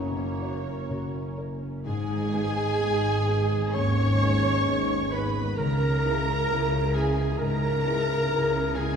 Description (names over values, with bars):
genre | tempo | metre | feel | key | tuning
cinematic, emotional film score for orchestra | 62-66 BPM | 4/4 | rubato | unclear | A4 = 440 Hz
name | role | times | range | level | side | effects
warm symphonic violin section | melody | 0.0-9.0 s | C#5 to C#6 | -34 LUFS | left 2 dB | none
clear clarinet | second line | 0.0-9.0 s | A#3 to C#5 | -34 LUFS | right 2 dB | none
dark symphonic violin section | second line | 0.0-9.0 s | G#4 to C#5 | -35 LUFS | equal | none
hollow large flute ensemble | second line | 0.0-1.5 s | A#5 | -44 LUFS | right 2 dB | none
mellow cor anglais | second line | 0.0-9.0 s | G#4 to C#5 | -35 LUFS | right 5 dB | none
dark concert grand piano | accompaniment | 0.0-9.0 s | F#1 to C#5 | -32 LUFS | left 1 dB | none
dark symphonic viola section | accompaniment | 0.0-9.0 s | A#3 to C#5 | -34 LUFS | right 3 dB | none
mellow French horn section | sustained chords | 0.0-9.0 s | G#3 to A#4 | -35 LUFS | left 3 dB | none
concert harp | arpeggios | 0.0-9.0 s | F#2 to C#5 | -33 LUFS | left 4 dB | none
rich symphonic cello section | bass | 0.0-9.0 s | F#2 to C#3 | -32 LUFS | right 2 dB | none
warm symphonic double bass section | bass | 0.0-9.0 s | F#1 to C#2 | -30 LUFS | right 1 dB | none
room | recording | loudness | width
wet recital hall reverb, RT60 1.8 s | heard from further back in the room | -23 LUFS | side -6 dB against mid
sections
0.0-1.9 A section; 1.9-9.0 B section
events
none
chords
0.0 F#; 1.9 G#m; 5.6 C#m7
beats
0.90 | 1.85 2.80 3.75 4.67 | 5.58 6.49 7.40 8.31